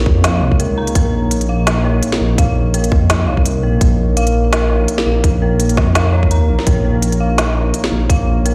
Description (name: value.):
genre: half-time drum and bass.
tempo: 168 BPM.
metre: 4/4.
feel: swing 55% on 16ths, half-time.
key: Bb minor.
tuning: A4 = 440 Hz.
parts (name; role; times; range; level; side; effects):
dark analog pad; sustained chords; 0.0-8.5 s; Bb3 to Db5; -24 LUFS; equal; chorus, sidechain pumping.
dark detuned synth bell; arpeggios; 0.0-8.5 s; Bb4 to Bb5; -26 LUFS; equal; chorus, delay.
dark detuned saw bass; bass; 0.0-8.5 s; Bb1 to F2; -17 LUFS; equal; none.
electronic kick drum; drums; 0.1-8.2 s; none; -16 LUFS; equal; none.
organic electronic drum kit; drums; 0.2-8.5 s; hi-hat, snare drum; -22 LUFS; equal; overdrive.
room: light reverb.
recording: played on a big sound system in a bare room, large studio reverb.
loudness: -15 LUFS.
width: mono.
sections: 0.0-8.5 A section.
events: none.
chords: 0.0 Bbm.